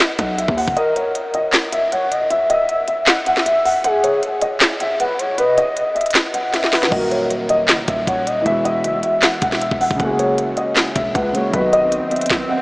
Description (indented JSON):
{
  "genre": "hip hop, trap",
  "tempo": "156 BPM",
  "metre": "4/4",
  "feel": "half-time",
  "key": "unclear",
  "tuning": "A4 = 440 Hz",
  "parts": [
    { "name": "trap drum kit", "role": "drums", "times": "0.0-12.4 s", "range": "crash cymbal, handclaps, hi-hat, kick drum, snare drum", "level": "-20 LUFS", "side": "equal", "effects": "none" },
    { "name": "dark concert grand piano", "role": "melody", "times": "0.2-12.6 s", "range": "Cb5 to F#5", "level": "-19 LUFS", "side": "equal", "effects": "analog chorus, low-pass filter, tape echo" },
    { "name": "hard-hitting 808-style bass", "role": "bass", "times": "0.2-0.8, 6.9-12.0 s", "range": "Eb1 to D#2", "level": "-25 LUFS", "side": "equal", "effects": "none" },
    { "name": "gliding portamento lead", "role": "second line", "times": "0.8-12.3 s", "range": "Ab4 to Gb5", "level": "-21 LUFS", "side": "left 1 dB", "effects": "chorus, tape echo" },
    { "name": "warm concert grand piano", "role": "accompaniment", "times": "6.9-12.6 s", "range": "Db3 to Gb4", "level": "-24 LUFS", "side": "equal", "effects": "lush chorus, low-pass filter" },
    { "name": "swell", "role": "sound effects", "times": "11.8-12.6 s", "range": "none", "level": "-25 LUFS", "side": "right 2 dB", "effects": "none" }
  ],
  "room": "wet huge ambient reverb, RT60 7.8 s",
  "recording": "dreamy mix soaked in reverb, small speaker sound",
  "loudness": "-15 LUFS",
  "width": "side -24 dB against mid",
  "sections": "0.0-12.6 A section",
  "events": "kick muted 0.8-6.9; drum fill 6.5-6.9; swell 11.8-12.6",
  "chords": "0.0 B; 0.8 N.C.; 6.9 Ebm; 8.5 Eadd9; 10.0 Gbadd9; 11.5 B",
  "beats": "0.00 0.38 | 0.77 1.15 1.53 1.92 | 2.30 2.69 3.07 3.46 | 3.84 4.23 4.61 5.00 | 5.38 5.77 6.15 6.54 | 6.92 7.30 7.69 8.07 | 8.46 8.84 9.23 9.61 | 10.00 10.38 10.77 11.15 | 11.54 11.92 12.30"
}